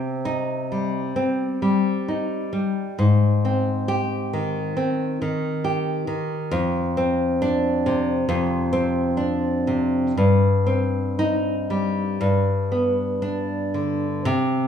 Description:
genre	romantic piece for solo classical guitar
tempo	56-69 BPM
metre	4/4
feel	rubato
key	C minor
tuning	A4 = 439 Hz
part	nylon-string guitar	solo	0.0-14.7 s	F2 to G4	-20 LUFS	left 1 dB	none
room	wet large studio reverb, RT60 1.4 s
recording	band playing live in one room, studio reverb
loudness	-20 LUFS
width	side -8 dB against mid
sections	0.0-14.3 A section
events	none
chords	0.0 Cm; 3.0 Abmaj7; 6.5 Dm7/F; 10.2 Cm/G; 12.2 G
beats	0.24 1.16 2.08 | 2.99 3.88 4.76 5.64 | 6.52 7.41 8.29 9.18 | 10.16 11.18 12.21 13.23 | 14.26

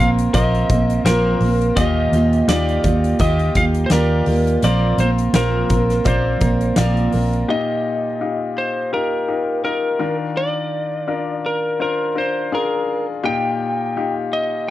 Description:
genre	piano-driven pop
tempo	84 BPM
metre	4/4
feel	swing 56% on 16ths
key	Eb major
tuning	A4 = 445 Hz
part	lightly driven lead guitar	melody	0.0-14.7 s	Bb4 to G5	-21 LUFS	equal	slapback echo
part	clear grand piano	accompaniment	0.0-14.7 s	Bb2 to Eb5	-23 LUFS	left 5 dB	none
part	picked steel-string acoustic guitar	riff	0.0-7.5 s	Bb2 to Bb4	-21 LUFS	right 4 dB	none
part	vintage muted fingered electric bass	bass	0.0-7.4 s	Bb1 to Eb2	-19 LUFS	equal	none
part	huge arena drum kit	drums	0.2-7.5 s	hi-hat, kick drum, snare drum	-22 LUFS	equal	none
room	light reverb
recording	dry, close 1970s-style studio recording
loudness	-16 LUFS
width	side -14 dB against mid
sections	0.0-7.5 A section; 7.5-14.7 B section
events	none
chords	0.0 Bbsus2; 1.8 Ebadd9; 4.6 Bbsus2; 7.5 Ebadd9; 10.0 Bb/Eb; 13.2 Ebadd9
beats	0.34 1.05 | 1.77 2.48 3.20 3.91 | 4.63 5.34 6.06 6.78 | 7.49 8.21 8.93 9.65 | 10.36 11.08 11.80 12.52 | 13.24 13.96 14.67

